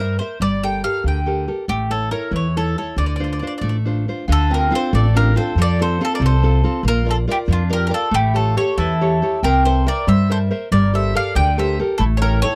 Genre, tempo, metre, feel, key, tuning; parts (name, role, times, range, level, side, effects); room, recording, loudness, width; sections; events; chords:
italian folk, Italian serenade; 93 BPM (dotted quarters); 6/8; straight; D minor; A4 = 440 Hz
bowl-back mandolin; melody; 0.0-12.6 s; F4 to G5; -25 LUFS; equal
nylon-string guitar; accompaniment; 0.0-12.6 s; C3 to E5; -24 LUFS; equal
upright bass; bass; 0.0-12.4 s; G1 to G2; -21 LUFS; equal
mandolin; second line; 4.3-12.6 s; D4 to D5; -28 LUFS; equal
little or no reverb; dry, close 1970s-style studio recording; -18 LUFS; mono
0.0-4.3 A section; 4.3-12.6 A section
0.4 Gmadd9; 1.7 A; 3.0 Dm7; 5.6 F; 6.9 Bb; 8.1 A7; 9.4 C7; 10.7 Gmadd9; 12.0 A